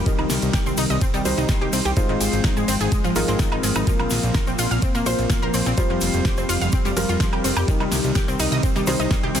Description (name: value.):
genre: progressive house.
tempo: 126 BPM.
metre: 4/4.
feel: straight.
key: unclear.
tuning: A4 = 440 Hz.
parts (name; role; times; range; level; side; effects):
airy breathy pad; sustained chords; 0.0-9.4 s; Eb3 to C4; -27 LUFS; left 1 dB; chorus, sidechain pumping.
felt-muted upright piano; stabs; 0.0-9.4 s; G3 to C5; -26 LUFS; left 1 dB; sidechain pumping, digital delay.
fat analog bass; bass; 0.0-9.4 s; F1 to C2; -25 LUFS; equal; sidechain pumping.
analog pluck; arpeggios; 0.1-9.4 s; Eb3 to F6; -26 LUFS; equal; chorus, sidechain pumping, digital delay.
electronic kick drum; drums; 0.1-9.2 s; none; -22 LUFS; equal; small room reverb.
pop drum kit; drums; 0.1-9.4 s; hi-hat, ride cymbal, snare drum, woodblock; -27 LUFS; right 1 dB; soft clipping on snare, small room reverb, sidechain pumping on hats, sidechain pumping on perc, sidechain pumping on cymbals.
egg shaker; percussion; 0.1-9.4 s; none; -33 LUFS; left 4 dB; none.
room: little or no reverb.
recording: dense, heavily limited modern master.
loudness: -18 LUFS.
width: side -9 dB against mid.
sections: 0.0-9.4 A section.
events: none.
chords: 0.1 Cm; 2.0 Ab6; 3.9 Bbsus2; 5.8 Fsus2; 7.7 Cm.